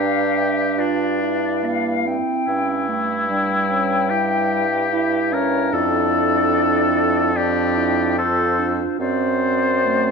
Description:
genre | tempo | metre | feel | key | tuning
classical, slow romantic movement for wind quintet | 73 BPM | 4/4 | rubato | unclear | A4 = 440 Hz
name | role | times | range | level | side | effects
silver concert flute | melody | 0.0-10.1 s | C5 to G5 | -25 LUFS | left 6 dB | none
clear oboe | second line | 0.0-10.1 s | D4 to C5 | -22 LUFS | left 4 dB | none
mellow clarinet | accompaniment | 0.0-10.1 s | G3 to F4 | -24 LUFS | right 10 dB | none
warm French horn | accompaniment | 0.0-10.1 s | C4 to F4 | -26 LUFS | left 2 dB | none
mellow bassoon | bass | 0.0-10.1 s | F2 to G2 | -24 LUFS | right 2 dB | none
room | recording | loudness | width
moderate recital hall reverb, RT60 1.8 s | none | -17 LUFS | side -5 dB against mid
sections
0.0-10.1 A section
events
none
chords
0.0 Gm7; 2.5 Gdim7(no3); 5.7 Dm/F; 9.0 D7/F#

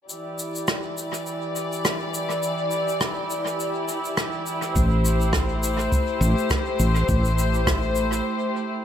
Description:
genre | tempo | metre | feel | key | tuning
sunset chillout | 103 BPM | 4/4 | swing 56% on 16ths | E minor | A4 = 439 Hz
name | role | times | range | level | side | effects
dark studio string section | sustained chords | 0.1-8.8 s | E3 to D5 | -25 LUFS | left 1 dB | none
shaker and rim click | drums | 0.1-8.2 s | none | -28 LUFS | equal | tape echo
woody fretless electric bass | bass | 4.8-8.2 s | A1 | -22 LUFS | equal | tube saturation
electronic kick drum | drums | 4.8-7.8 s | none | -25 LUFS | equal | none
room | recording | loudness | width
moderate plate reverb, RT60 2.0 s | echo-heavy mix | -21 LUFS | side -9 dB against mid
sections
0.1-8.8 A section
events
break 8.3-8.8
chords
0.1 Em7; 4.8 Am7

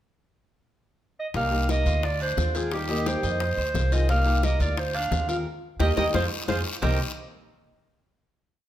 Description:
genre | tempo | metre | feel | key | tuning
latin, Cuban son and guajira | 175 BPM | 4/4 | straight | C minor | A4 = 440 Hz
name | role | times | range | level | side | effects
warm clarinet | melody | 1.2-7.0 s | G4 to F5 | -28 LUFS | right 2 dB | none
flamenco guitar | accompaniment | 1.3-7.0 s | C3 to G4 | -32 LUFS | left 2 dB | none
Cuban tres | arpeggios | 1.3-7.0 s | C4 to Eb5 | -32 LUFS | right 3 dB | none
upright bass | bass | 1.3-7.0 s | C2 to F2 | -26 LUFS | equal | none
bongos | percussion | 1.3-6.9 s | none | -34 LUFS | left 5 dB | none
guiro | percussion | 1.3-6.9 s | none | -37 LUFS | left 5 dB | none
room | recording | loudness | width
moderate large studio reverb, RT60 1.3 s | none | -23 LUFS | side -12 dB against mid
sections
0.0-1.3 pickup bar; 1.3-6.8 montuno (vamp); 6.8-8.2 final chord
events
band accent 5.5-6.8; drum fill 6.3-6.8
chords
0.0 N.C.; 1.3 Cm7; 2.0 Dm7b5; 2.7 Eb; 3.4 Fm7; 4.1 Cm7; 4.8 Dm7b5; 5.5 Eb; 6.1 Fm; 6.8 C7(no3)

